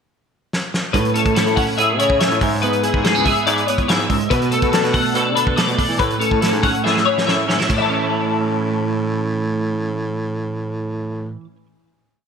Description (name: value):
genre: math rock and midwest emo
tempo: 142 BPM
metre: 4/4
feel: straight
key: A major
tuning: A4 = 441 Hz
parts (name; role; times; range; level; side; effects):
- loose indie drum kit; drums; 0.5-7.8 s; crash cymbal, hi-hat, kick drum, snare drum; -21 LUFS; equal; gated reverb
- twelve-string electric guitar; accompaniment; 0.9-11.7 s; G#2 to A4; -20 LUFS; right 6 dB; ensemble chorus
- twelve-string electric guitar; arpeggios; 0.9-11.4 s; G#4 to A5; -19 LUFS; left 7 dB; analog chorus, digital delay
- breathy baritone saxophone; bass; 0.9-11.3 s; C#2 to E3; -24 LUFS; equal; none
room: moderate lush hall reverb, RT60 1.7 s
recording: bright 1980s-style digital production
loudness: -16 LUFS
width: side -6 dB against mid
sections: 0.0-0.9 pickup bar; 0.9-7.7 A section; 7.7-11.1 final chord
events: drum fill 0.5-0.9, 6.8-7.7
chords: 0.0 N.C.; 0.9 Amaj7; 2.4 E; 4.3 Bm7; 6.0 Amaj7; 7.7 A